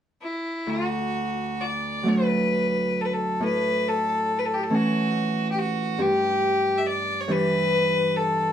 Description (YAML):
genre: celtic folk, Celtic slow air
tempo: 43-48 BPM (dotted quarters)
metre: 6/8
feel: rubato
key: D major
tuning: A4 = 440 Hz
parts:
  - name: bright fiddle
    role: melody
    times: 0.2-8.5 s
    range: E4 to E5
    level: -24 LUFS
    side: left 1 dB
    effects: none
  - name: Celtic harp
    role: accompaniment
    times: 0.7-8.5 s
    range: D2 to D4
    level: -26 LUFS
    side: right 1 dB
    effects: none
room: moderate studio reverb, RT60 0.7 s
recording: band playing live in one room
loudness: -22 LUFS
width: side -9 dB against mid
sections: 0.7-8.5 A section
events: none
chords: 0.0 N.C.; 0.7 D; 3.4 A; 6.0 Em7/G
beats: | 0.67 2.05 | 3.41 4.72 | 5.99 7.28